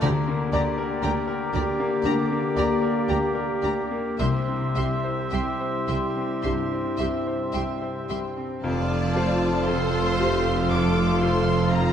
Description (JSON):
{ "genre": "cinematic, emotional film score for orchestra", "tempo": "52-60 BPM", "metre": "4/4", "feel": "rubato", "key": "unclear", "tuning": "A4 = 439 Hz", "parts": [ { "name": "warm symphonic violin section", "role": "melody", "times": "0.0-11.9 s", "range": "A5 to D6", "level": "-34 LUFS", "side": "left 2 dB", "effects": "none" }, { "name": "clear studio violin section", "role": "second line", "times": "0.0-11.9 s", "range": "A4 to E5", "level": "-35 LUFS", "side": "left 1 dB", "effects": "none" }, { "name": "mellow cor anglais", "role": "second line", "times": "0.0-11.9 s", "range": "D5 to F5", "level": "-34 LUFS", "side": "right 2 dB", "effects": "none" }, { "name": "mellow hollow large flute ensemble", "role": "second line", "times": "0.0-11.9 s", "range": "Bb5 to C6", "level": "-35 LUFS", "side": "left 3 dB", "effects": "none" }, { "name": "warm clarinet", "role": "second line", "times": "0.0-11.9 s", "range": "G4 to A4", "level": "-34 LUFS", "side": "left 2 dB", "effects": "none" }, { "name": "bright grand piano", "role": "accompaniment", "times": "0.0-11.9 s", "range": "F1 to G5", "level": "-27 LUFS", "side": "left 1 dB", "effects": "none" }, { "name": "warm symphonic viola section", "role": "accompaniment", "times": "0.0-11.9 s", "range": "F4 to A4", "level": "-34 LUFS", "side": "right 2 dB", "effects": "none" }, { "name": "dark French horn section", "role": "sustained chords", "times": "0.0-11.9 s", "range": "G3 to G4", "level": "-30 LUFS", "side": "left 2 dB", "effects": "none" }, { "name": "concert harp", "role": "arpeggios", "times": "0.0-11.9 s", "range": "C3 to E5", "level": "-34 LUFS", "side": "left 6 dB", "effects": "none" }, { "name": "dark symphonic cello section", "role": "bass", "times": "0.0-11.9 s", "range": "C2 to F2", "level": "-33 LUFS", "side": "right 4 dB", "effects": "none" }, { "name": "rich symphonic double bass section", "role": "bass", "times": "0.0-11.9 s", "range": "F1 to D2", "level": "-29 LUFS", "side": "right 4 dB", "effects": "none" } ], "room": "wet concert hall reverb, RT60 2.4 s", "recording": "dark, warm production", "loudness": "-22 LUFS", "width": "side -8 dB against mid", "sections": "0.0-8.6 A section; 8.6-11.9 B section", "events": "none", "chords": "0.0 Gm/D; 4.2 C; 8.6 F", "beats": "| 0.03 1.03 2.06 3.09 | 4.20 5.33 6.45 7.55 | 8.64 9.68 10.71 11.72" }